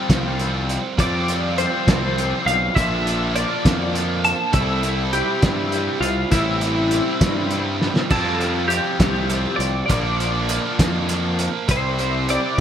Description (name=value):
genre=indie rock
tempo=67 BPM (dotted quarters)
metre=6/8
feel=straight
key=F major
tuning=A4 = 440 Hz
part: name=twelve-string electric guitar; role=melody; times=0.0-12.6 s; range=E4 to A5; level=-23 LUFS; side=left 1 dB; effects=analog chorus
part: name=distorted electric guitar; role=riff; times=0.0-12.6 s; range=F3 to F4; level=-25 LUFS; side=right 6 dB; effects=overdrive, analog chorus, ping-pong delay
part: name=overdriven semi-hollow guitar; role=riff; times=0.0-12.6 s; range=C3 to F4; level=-28 LUFS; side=left 10 dB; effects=ensemble chorus
part: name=fuzz picked electric bass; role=bass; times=0.1-12.6 s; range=A1 to G2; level=-24 LUFS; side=equal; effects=overdrive
part: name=cloth-damped thuddy drum kit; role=drums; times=0.1-12.4 s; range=crash cymbal, hi-hat, kick drum, snare drum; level=-21 LUFS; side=equal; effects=gated reverb
part: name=group handclap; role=percussion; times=8.1-12.4 s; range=none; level=-36 LUFS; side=right 5 dB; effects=none
room=moderate plate reverb, RT60 1.5 s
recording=bright 1980s-style digital production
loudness=-18 LUFS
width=side -9 dB against mid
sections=0.0-8.1 A section; 8.1-12.6 A section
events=drum fill 7.8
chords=0.0 Fsus2; 2.8 Bb; 4.5 C; 8.1 Fsus2; 9.9 Bb; 11.7 Cadd9